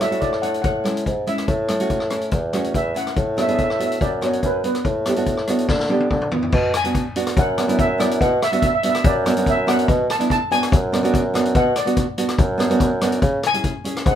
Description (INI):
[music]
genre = calypso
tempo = 143 BPM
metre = 4/4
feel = straight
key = unclear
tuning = A4 = 440 Hz
[part]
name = steel pan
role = melody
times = 0.0-14.2 s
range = B4 to A5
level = -23 LUFS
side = left 1 dB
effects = none
[part]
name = nylon-string guitar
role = accompaniment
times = 0.0-14.1 s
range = G#3 to G#4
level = -22 LUFS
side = right 2 dB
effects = none
[part]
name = mellow bassoon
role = bass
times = 0.0-14.2 s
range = E2 to D3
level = -21 LUFS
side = equal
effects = none
[part]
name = street-band drum kit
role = drums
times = 0.0-14.2 s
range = crash cymbal, hi-hat, kick drum, rim click, snare drum, toms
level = -22 LUFS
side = left 2 dB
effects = none
[sound]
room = light reverb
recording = minimal, uncompressed stereo recording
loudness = -17 LUFS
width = side -10 dB against mid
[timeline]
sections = 0.0-6.5 A section; 6.5-14.2 B section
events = drum fill 5.7-6.5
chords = 0.0 Dadd9/A; 0.7 C#m/A; 1.5 A6; 3.2 Bm7/A; 4.9 Gmaj7/A; 6.5 Bm; 13.2 C#m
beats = 0.23 0.65 1.07 | 1.49 1.91 2.33 2.75 | 3.17 3.59 4.01 4.43 | 4.85 5.27 5.69 6.11 | 6.53 6.95 7.37 7.79 | 8.21 8.63 9.04 9.46 | 9.88 10.30 10.72 11.14 | 11.55 11.97 12.39 12.81 | 13.23 13.65 14.06